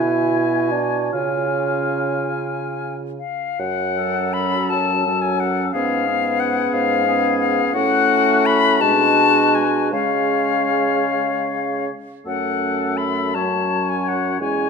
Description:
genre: classical, slow romantic movement for wind quintet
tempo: 47-62 BPM (dotted quarters)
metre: 6/8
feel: rubato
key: F# minor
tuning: A4 = 441 Hz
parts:
  - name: bright concert flute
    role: melody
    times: 0.0-14.7 s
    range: E#5 to B5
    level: -20 LUFS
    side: left 8 dB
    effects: none
  - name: warm oboe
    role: second line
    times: 0.0-14.7 s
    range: F#4 to G#5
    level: -26 LUFS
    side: left 4 dB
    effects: none
  - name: mellow clarinet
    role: accompaniment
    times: 0.0-14.7 s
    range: C#4 to F#4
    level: -25 LUFS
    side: right 7 dB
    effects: none
  - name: warm French horn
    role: accompaniment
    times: 0.0-14.7 s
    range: B2 to B3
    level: -25 LUFS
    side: right 1 dB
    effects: none
  - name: dark bassoon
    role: bass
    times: 0.0-14.7 s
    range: E2 to E4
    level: -24 LUFS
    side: right 4 dB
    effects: none
room: moderate recital hall reverb, RT60 1.6 s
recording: none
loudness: -17 LUFS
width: side -5 dB against mid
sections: 0.0-3.6 A section; 3.6-14.7 B section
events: none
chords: 0.0 G#m7b5/B; 1.1 C#; 3.6 F#m; 5.7 C#7/G#; 7.7 F#m/A; 8.8 G#m7b5/B; 9.9 C#; 12.3 F#m

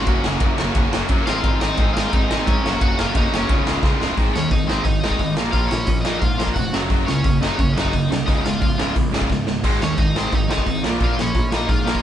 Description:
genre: punk rock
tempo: 176 BPM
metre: 4/4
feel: straight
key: unclear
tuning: A4 = 439 Hz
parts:
  - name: overdriven semi-hollow guitar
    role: melody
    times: 0.0-12.0 s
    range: C4 to Gb5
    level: -26 LUFS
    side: left 1 dB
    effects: digital delay
  - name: distorted electric guitar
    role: riff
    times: 0.0-12.0 s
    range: Db2 to Ab4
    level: -25 LUFS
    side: left 8 dB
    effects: overdrive
  - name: distorted electric guitar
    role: riff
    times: 0.0-12.0 s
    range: Db2 to Ab4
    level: -24 LUFS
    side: right 8 dB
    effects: overdrive
  - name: fuzz picked electric bass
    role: bass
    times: 0.0-12.0 s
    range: Db1 to Ab2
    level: -26 LUFS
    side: equal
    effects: overdrive
  - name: raw garage drum kit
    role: drums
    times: 0.1-12.0 s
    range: crash cymbal, hi-hat, kick drum, ride cymbal, snare drum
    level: -20 LUFS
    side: equal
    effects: none
room: light reverb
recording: band playing live in one room, nothing above 10.5 kHz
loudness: -17 LUFS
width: side -10 dB against mid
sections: 0.0-4.2 A section; 4.2-12.0 B section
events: drum fill 3.8-4.2, 9.3-9.6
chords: 0.1 Gb; 1.3 Ab; 2.6 Gb; 3.5 Db; 4.2 Ab; 5.4 Bbm; 6.7 Gb5; 8.3 Db; 9.6 Ab; 10.8 Bbm

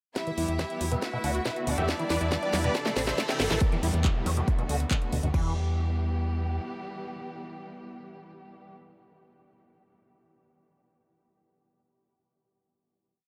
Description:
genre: uplifting trance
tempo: 139 BPM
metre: 4/4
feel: straight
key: E minor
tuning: A4 = 437 Hz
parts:
  - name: supersaw chords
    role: melody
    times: 0.2-3.6 s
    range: E4 to G5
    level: -37 LUFS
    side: equal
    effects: sidechain pumping, low-pass filter, tape echo
  - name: clear studio violin section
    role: second line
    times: 0.2-3.5 s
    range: D4 to E5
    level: -39 LUFS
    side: equal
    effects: dub echo
  - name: warm studio string section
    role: sustained chords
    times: 0.2-8.7 s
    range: C3 to G4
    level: -40 LUFS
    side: equal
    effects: sidechain pumping
  - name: electronic kick drum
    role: drums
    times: 0.2-5.4 s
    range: none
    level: -30 LUFS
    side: equal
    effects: high-pass filter on kick
  - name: house drum kit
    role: drums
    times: 0.2-5.4 s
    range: crash cymbal, handclaps, hi-hat, snare drum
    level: -36 LUFS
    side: equal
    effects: none
  - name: riser, reverse cymbal and downlifter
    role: sound effects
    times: 2.4-7.1 s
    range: none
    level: -43 LUFS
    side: equal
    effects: none
  - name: liquid acid bass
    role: arpeggios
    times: 0.3-5.5 s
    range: F#2 to E4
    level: -38 LUFS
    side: equal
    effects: phaser, ensemble chorus, sidechain pumping, tape echo
  - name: solid FM bass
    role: bass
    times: 0.4-6.6 s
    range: G1 to E2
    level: -31 LUFS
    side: equal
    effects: sidechain pumping
room: light reverb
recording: none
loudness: -28 LUFS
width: mono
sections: 0.2-3.6 build; 3.6-5.3 outro; 5.3-8.8 final chord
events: build-up 0.2-3.6; drum fill 0.2-3.6; filter sweep on supersaw synth 0.2-3.6; filter sweep on acid bass 0.2-3.6, 3.6-5.3; reverse cymbal 2.8-3.6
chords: 0.2 Em; 1.0 Bm7/D; 1.9 Em; 2.8 Am; 3.6 Em; 4.5 Bm7/D; 5.3 Em

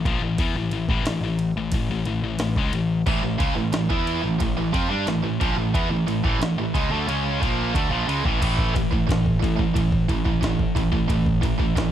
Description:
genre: heavy metal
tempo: 90 BPM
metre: 4/4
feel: straight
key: unclear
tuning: A4 = 441 Hz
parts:
  - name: high-gain distorted guitar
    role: riff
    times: 0.0-11.9 s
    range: A2 to E4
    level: -25 LUFS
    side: left 6 dB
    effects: distortion
  - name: growling picked electric bass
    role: bass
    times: 0.0-11.9 s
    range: A1 to A2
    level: -27 LUFS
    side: equal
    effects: overdrive
  - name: jungle sampler-style drum kit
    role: drums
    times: 0.1-11.9 s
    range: crash cymbal, kick drum, ride cymbal, snare drum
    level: -25 LUFS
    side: equal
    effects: none
  - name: tight distorted guitar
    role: riff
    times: 3.1-11.9 s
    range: A2 to E4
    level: -26 LUFS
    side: right 11 dB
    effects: distortion
room: little or no reverb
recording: dark, warm production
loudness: -20 LUFS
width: side -10 dB against mid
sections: 0.0-8.4 A section; 8.4-11.9 B section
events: kick and snare drop out 7.1-8.4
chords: 0.0 A; 8.4 A5

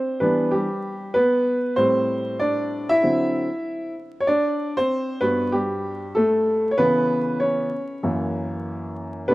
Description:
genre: hip hop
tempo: 96 BPM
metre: 4/4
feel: swing 59% on 16ths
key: unclear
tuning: A4 = 440 Hz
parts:
  - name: warm upright piano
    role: solo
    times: 0.0-9.3 s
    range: F#2 to E5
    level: -20 LUFS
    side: equal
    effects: none
room: light reverb, small room ambience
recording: rough home demo mix, vinyl crackle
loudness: -20 LUFS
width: side -18 dB against mid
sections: 0.0-9.3 A section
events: upright piano solo 0.0-9.3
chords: 0.0 Em7; 1.8 Am7; 3.0 D9; 4.3 Gmaj9; 6.8 C#m7; 8.0 F#7

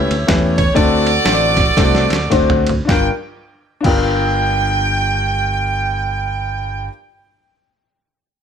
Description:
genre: uptempo gospel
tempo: 101-130 BPM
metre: 4/4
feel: swing 62% on 8ths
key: G minor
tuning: A4 = 444 Hz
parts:
  - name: clear saxophone section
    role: melody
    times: 0.0-6.9 s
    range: E4 to G5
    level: -18 LUFS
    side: right 3 dB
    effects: plate reverb
  - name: warm upright piano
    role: accompaniment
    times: 0.0-6.9 s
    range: G2 to C5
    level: -19 LUFS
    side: left 5 dB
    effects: none
  - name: fingered electric bass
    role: bass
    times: 0.0-6.9 s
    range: G1 to E2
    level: -20 LUFS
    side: equal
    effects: none
  - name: lo-fi sampler-style drum kit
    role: drums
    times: 0.1-4.0 s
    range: crash cymbal, kick drum, ride cymbal, snare drum, toms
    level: -18 LUFS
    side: right 1 dB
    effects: none
room: moderate large studio reverb, RT60 0.9 s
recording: none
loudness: -13 LUFS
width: side -8 dB against mid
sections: 0.0-2.9 A section; 2.9-7.6 B section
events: slowing down 0.0-2.9; drum fill 1.8-2.9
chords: 0.0 A7; 0.8 D7; 2.9 Gm7

